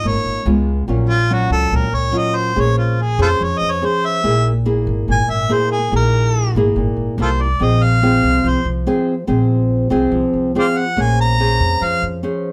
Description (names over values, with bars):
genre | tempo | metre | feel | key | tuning
bossa nova | 143 BPM | 4/4 | straight | Bb minor | A4 = 435 Hz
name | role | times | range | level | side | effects
mellow harmonica | melody | 0.0-12.0 s | F4 to Bb5 | -21 LUFS | equal | none
nylon-string guitar | accompaniment | 0.0-12.5 s | Bb2 to C5 | -21 LUFS | equal | none
upright bass | bass | 0.0-12.2 s | Ab1 to F2 | -20 LUFS | equal | none
room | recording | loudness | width
light reverb | none | -17 LUFS | mono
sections
0.0-12.5 A section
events
harmonica solo 0.0-12.5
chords
0.5 Db7; 0.9 Gbmaj7/Bb; 2.6 Bbm9; 4.2 C7b13/G# (rootless); 7.2 C7; 7.6 Fm/Bb; 11.0 Bbm9